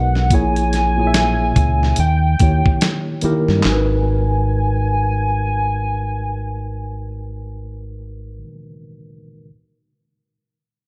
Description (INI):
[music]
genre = R&B, neo-soul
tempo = 72 BPM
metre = 4/4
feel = swing 60% on 16ths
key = G# minor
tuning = A4 = 440 Hz
[part]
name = hollow square lead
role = melody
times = 0.0-7.7 s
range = F#5 to G#5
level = -24 LUFS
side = equal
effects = chorus
[part]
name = tine electric piano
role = accompaniment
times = 0.0-9.5 s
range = A#2 to E5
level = -26 LUFS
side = equal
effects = overdrive
[part]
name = deep dub fingered electric bass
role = bass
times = 0.0-8.4 s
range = G#1 to G2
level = -22 LUFS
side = equal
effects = none
[part]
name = dusty soul sampler-style drum kit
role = drums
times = 0.2-3.9 s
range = handclaps, hi-hat, kick drum, snare drum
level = -20 LUFS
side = equal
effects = none
[sound]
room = light reverb, digital ambience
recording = dark, warm production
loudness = -17 LUFS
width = mono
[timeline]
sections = 0.0-3.6 A section; 3.6-7.0 B section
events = none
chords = 0.3 A#m7b5; 2.0 D#7b9; 3.6 G#m9